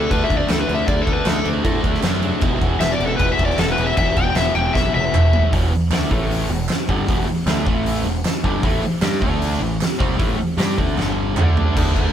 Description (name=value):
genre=garage rock duo or trio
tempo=154 BPM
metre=4/4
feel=straight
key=E minor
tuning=A4 = 439 Hz
part: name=overdriven slide guitar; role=melody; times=0.0-5.5 s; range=A4 to G5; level=-21 LUFS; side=left 5 dB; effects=none
part: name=fuzz guitar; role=riff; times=0.0-12.1 s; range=E2 to G4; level=-22 LUFS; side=equal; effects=distortion
part: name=growling picked electric bass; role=bass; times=0.0-12.1 s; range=E1 to A2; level=-24 LUFS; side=equal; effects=overdrive, tube saturation
part: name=oversized low-tuned drum kit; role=drums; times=0.1-12.1 s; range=crash cymbal, hi-hat, kick drum, snare drum, toms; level=-20 LUFS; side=equal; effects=none
part: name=group handclap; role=percussion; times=0.5-11.5 s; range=none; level=-32 LUFS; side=right 7 dB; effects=none
room=light reverb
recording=band playing live in one room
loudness=-16 LUFS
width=side -9 dB against mid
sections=0.0-5.5 A section; 5.5-11.8 B section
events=drum fill 4.8-5.5, 11.0-11.8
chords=0.0 D5; 2.4 E5; 6.1 A5; 6.5 Em; 7.7 A5; 8.1 Em; 8.6 A5; 9.2 D5; 9.6 A5; 11.0 G5; 11.4 D5